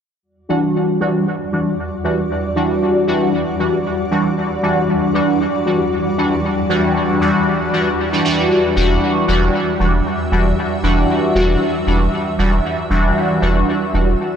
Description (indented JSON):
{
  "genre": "dub techno",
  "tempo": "116 BPM",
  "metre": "4/4",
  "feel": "straight",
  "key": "E minor",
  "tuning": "A4 = 437 Hz",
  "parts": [
    { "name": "granular cloud pad", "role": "sustained chords", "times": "1.2-14.4 s", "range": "E2 to E5", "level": "-22 LUFS", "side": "equal", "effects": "built-in reverb" },
    { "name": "resonant sweep polysynth", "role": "stabs", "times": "0.5-14.1 s", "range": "E3 to F#4", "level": "-16 LUFS", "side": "equal", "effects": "chorus, phaser, dub echo" },
    { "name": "warm sub bass", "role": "bass", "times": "8.8-14.1 s", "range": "E1", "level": "-17 LUFS", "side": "equal", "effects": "tube saturation" }
  ],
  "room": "light reverb",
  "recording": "dry, gritty hardware recording, transformer saturation, nothing above 11.0 kHz",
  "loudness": "-14 LUFS",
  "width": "side -8 dB against mid",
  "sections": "0.2-14.4 A section",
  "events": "filter sweep on analog polysynth 0.2-14.4",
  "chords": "0.2 Em9"
}